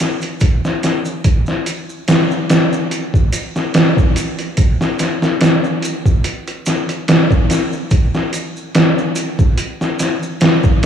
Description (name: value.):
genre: trip hop.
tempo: 72 BPM.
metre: 4/4.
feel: swing 54% on 16ths.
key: none.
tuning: none.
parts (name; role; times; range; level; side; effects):
trip hop sampler-style drum kit; drums; 0.0-10.9 s; hi-hat, kick drum, snare drum; -13 LUFS; equal; overdrive.
maracas; percussion; 0.2-10.9 s; none; -32 LUFS; right 1 dB; none.
room: wet plate reverb, RT60 2.4 s.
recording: dreamy mix soaked in reverb, vinyl crackle, studio reverb.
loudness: -13 LUFS.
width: side -8 dB against mid.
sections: 0.0-10.9 A section.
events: none.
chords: none.